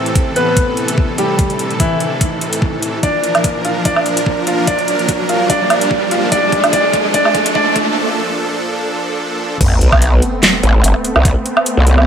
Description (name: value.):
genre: heavy wobble dubstep.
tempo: 146 BPM.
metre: 4/4.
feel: swing 55% on 16ths, half-time.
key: A minor.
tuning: A4 = 440 Hz.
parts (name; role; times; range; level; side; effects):
clear grand piano; melody; 0.0-7.9 s; E3 to F5; -16 LUFS; equal; digital delay.
supersaw chords; sustained chords; 0.0-12.1 s; A2 to Bb4; -20 LUFS; right 1 dB; sidechain pumping, low-pass filter.
riser and sub drop; sound effects; 0.3-11.3 s; none; -21 LUFS; right 1 dB; none.
dubstep drum kit; drums; 0.1-12.1 s; crash cymbal, handclaps, hi-hat, snare drum, woodblock; -16 LUFS; right 2 dB; studio reverb.
electronic kick drum; drums; 0.2-11.3 s; none; -16 LUFS; equal; studio reverb.
growl bass; bass; 9.6-12.1 s; G1 to C2; -10 LUFS; equal; chorus, overdrive.
room: moderate digital room reverb, RT60 1.2 s.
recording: high-pass filter.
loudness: -12 LUFS.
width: side -8 dB against mid.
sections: 0.0-9.6 A section; 9.6-12.1 B section.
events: build-up 0.0-9.6; riser 0.3-8.0; drum fill 3.0-8.0; break 8.0-9.6; drop 9.6-12.1; impact 9.6-11.3.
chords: 0.0 Amadd9; 3.0 Bb; 9.6 Amadd9.